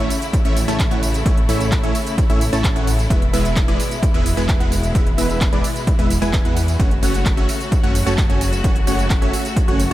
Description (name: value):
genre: EDM, festival progressive house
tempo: 130 BPM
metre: 4/4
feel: straight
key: A major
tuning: A4 = 441 Hz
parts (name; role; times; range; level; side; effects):
- rich studio string section; sustained chords; 0.0-9.9 s; B2 to F#4; -27 LUFS; left 1 dB; sidechain pumping
- supersaw stab; riff; 0.0-9.9 s; G#3 to A5; -22 LUFS; right 1 dB; vintage 12-bit sampler grit, sidechain pumping, tape echo
- fat analog bass; bass; 0.0-9.9 s; E1 to E2; -22 LUFS; equal; sidechain pumping
- big-room dance drum kit; drums; 0.1-9.9 s; handclaps, hi-hat, ride cymbal, tambourine; -28 LUFS; right 2 dB; overdrive
- electronic kick drum; drums; 0.3-9.7 s; none; -18 LUFS; equal; overdrive
room: light reverb, digital ambience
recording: faint mains hum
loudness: -15 LUFS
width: side -15 dB against mid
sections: 0.0-9.9 A section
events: none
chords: 0.0 A; 3.1 E; 6.8 F#m